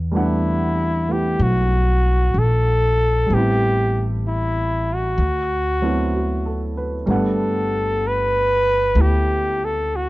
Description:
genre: jazz ballad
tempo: 64 BPM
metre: 4/4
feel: swing 67% on 8ths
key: E minor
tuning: A4 = 440 Hz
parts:
  - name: upright bass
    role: bass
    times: 0.0-10.1 s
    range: G1 to E2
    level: -21 LUFS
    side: equal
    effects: none
  - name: warm upright piano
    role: accompaniment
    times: 0.1-10.1 s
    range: F#3 to F#5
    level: -24 LUFS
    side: right 2 dB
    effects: none
  - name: warm flugelhorn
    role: melody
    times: 0.2-10.1 s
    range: E4 to B4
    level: -21 LUFS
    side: equal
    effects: none
room: little or no reverb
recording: dark, warm production, nothing above 7.9 kHz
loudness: -17 LUFS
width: side -18 dB against mid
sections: 0.0-10.1 A section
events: none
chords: 0.0 Em11; 3.3 Am9; 5.2 D13; 7.1 Gmaj9

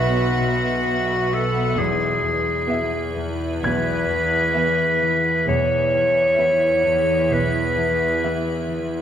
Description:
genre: cinematic, suspense film score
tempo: 65 BPM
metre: 4/4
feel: straight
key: unclear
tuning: A4 = 438 Hz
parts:
  - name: warm studio violin section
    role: melody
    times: 0.0-8.9 s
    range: E5 to F#5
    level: -32 LUFS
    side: left 4 dB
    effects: none
  - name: bright clarinet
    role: second line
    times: 0.0-8.7 s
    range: F#4 to C#5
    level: -20 LUFS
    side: equal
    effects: none
  - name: warm studio violin section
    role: second line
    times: 0.0-8.9 s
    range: E5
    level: -33 LUFS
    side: left 2 dB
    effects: none
  - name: dark chamber viola section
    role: accompaniment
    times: 0.0-8.9 s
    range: B3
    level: -32 LUFS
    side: right 3 dB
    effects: none
  - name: icy glass pad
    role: sustained chords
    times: 0.0-9.0 s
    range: E4 to E5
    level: -29 LUFS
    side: right 2 dB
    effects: chorus, built-in reverb
  - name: concert harp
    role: riff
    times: 0.0-9.0 s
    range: E2 to B3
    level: -29 LUFS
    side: left 8 dB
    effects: none
  - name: rich studio double bass section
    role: bass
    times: 0.0-8.1 s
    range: E1 to B1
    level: -28 LUFS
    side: right 2 dB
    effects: none
  - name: warm studio cello section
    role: bass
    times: 0.0-8.1 s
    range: E2 to B2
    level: -30 LUFS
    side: right 2 dB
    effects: none
  - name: bowed-like drone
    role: drone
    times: 0.0-9.0 s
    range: B1 to E2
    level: -28 LUFS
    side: right 2 dB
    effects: built-in reverb
  - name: clear grand piano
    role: texture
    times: 0.0-9.0 s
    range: G#6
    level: -31 LUFS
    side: equal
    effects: none
room: wet scoring stage reverb, RT60 1.7 s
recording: none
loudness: -18 LUFS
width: side -9 dB against mid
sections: 0.0-9.0 A section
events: none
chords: 0.0 Bsus4; 1.8 E

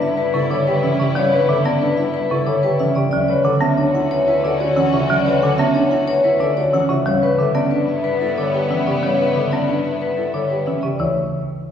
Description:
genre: classical, minimalist pattern music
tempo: 183 BPM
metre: 6/4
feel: straight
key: unclear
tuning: A4 = 440 Hz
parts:
  - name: vibraphone with medium hard mallets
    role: melody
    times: 0.0-11.1 s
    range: A4 to F#5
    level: -19 LUFS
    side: left 3 dB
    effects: none
  - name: rich chamber violin section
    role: sustained chords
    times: 0.0-10.8 s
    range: B3 to F#4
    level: -26 LUFS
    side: left 3 dB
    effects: none
  - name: dark grand piano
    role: arpeggios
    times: 0.0-11.2 s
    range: C#4 to B4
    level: -23 LUFS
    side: right 2 dB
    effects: none
  - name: rich double bass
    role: bass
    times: 0.0-11.1 s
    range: D2 to G2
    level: -28 LUFS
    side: equal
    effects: none
  - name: folk marimba with medium hard mallets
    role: accompaniment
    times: 0.3-11.1 s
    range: C#3 to B3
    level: -22 LUFS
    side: right 1 dB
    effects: none
room: wet scoring stage reverb, RT60 2.0 s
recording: heard from further back in the room, studio reverb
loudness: -15 LUFS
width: side -8 dB against mid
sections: 0.0-11.0 A section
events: none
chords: 0.0 G69; 3.1 Dmaj9; 7.1 G69; 11.0 Dsus2

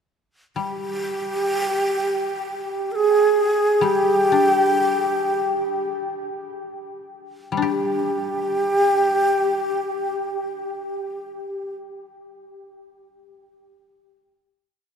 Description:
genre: japanese traditional, Japanese chamber music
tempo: free time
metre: none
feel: none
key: unclear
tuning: A4 = 439 Hz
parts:
  - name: breathy shakuhachi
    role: melody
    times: 0.6-11.7 s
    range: G4 to Bb4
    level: -20 LUFS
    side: right 1 dB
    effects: none
  - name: koto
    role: accompaniment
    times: 0.6-11.8 s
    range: G3 to G4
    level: -29 LUFS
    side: left 6 dB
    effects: none
room: wet cathedral reverb, RT60 5.7 s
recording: in a vast, echoing space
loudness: -19 LUFS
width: side -7 dB against mid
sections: 0.0-7.6 free-time section; 7.6-12.2 final chord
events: slowing down 3.3-7.6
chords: none

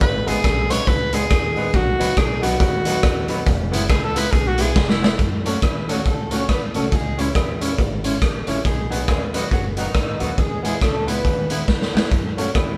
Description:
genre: ska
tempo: 139 BPM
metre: 4/4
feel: swing 60% on 8ths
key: F# dorian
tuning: A4 = 440 Hz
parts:
  - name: warm tenor saxophone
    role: melody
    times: 0.0-5.2 s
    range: E4 to C#5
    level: -25 LUFS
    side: equal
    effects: none
  - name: upright bass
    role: bass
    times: 0.0-12.8 s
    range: E1 to F#2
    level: -29 LUFS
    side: equal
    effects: none
  - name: raw garage drum kit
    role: drums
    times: 0.0-12.7 s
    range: hi-hat, kick drum, rim click, snare drum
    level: -22 LUFS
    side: equal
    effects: none
  - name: electric guitar at the edge of break-up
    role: accompaniment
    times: 0.3-12.5 s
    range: F#3 to F#4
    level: -30 LUFS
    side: equal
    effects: none
  - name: dark upright piano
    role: stabs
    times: 0.3-12.6 s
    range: B3 to C#5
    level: -32 LUFS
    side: equal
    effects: none
  - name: warm horn section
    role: melody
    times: 5.6-12.8 s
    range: D#3 to C#5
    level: -31 LUFS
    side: equal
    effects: none
room: light reverb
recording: band playing live in one room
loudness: -20 LUFS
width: mono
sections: 0.0-5.2 A section; 5.2-12.8 B section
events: tenor saxophone solo 0.0-5.2; drum fill 4.8-5.2, 11.7-12.1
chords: 0.0 G#m; 1.7 B; 3.5 E; 5.2 F#m; 6.9 C#m; 8.6 B; 10.4 E; 12.1 F#m

